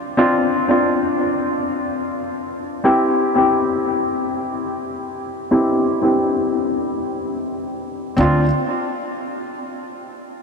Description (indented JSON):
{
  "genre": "trip hop",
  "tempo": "free time",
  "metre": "none",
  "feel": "none",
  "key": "D minor",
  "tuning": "A4 = 438 Hz",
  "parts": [
    { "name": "felt-muted upright piano", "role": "accompaniment", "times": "0.0-8.4 s", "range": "C4 to G4", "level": "-18 LUFS", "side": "left 1 dB", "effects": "harmonic tremolo, low-pass filter, tape echo" },
    { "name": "upright bass", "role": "bass", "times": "8.2-8.5 s", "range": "D2", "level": "-18 LUFS", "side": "right 1 dB", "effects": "none" }
  ],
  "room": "wet huge ambient reverb, RT60 7.9 s",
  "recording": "dreamy mix soaked in reverb",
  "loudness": "-17 LUFS",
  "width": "side -5 dB against mid",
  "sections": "0.0-8.2 A section; 8.2-10.4 B section",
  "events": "filter sweep on felt piano 0.0-8.2",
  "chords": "0.0 Dm7; 2.8 C; 8.2 Dm7"
}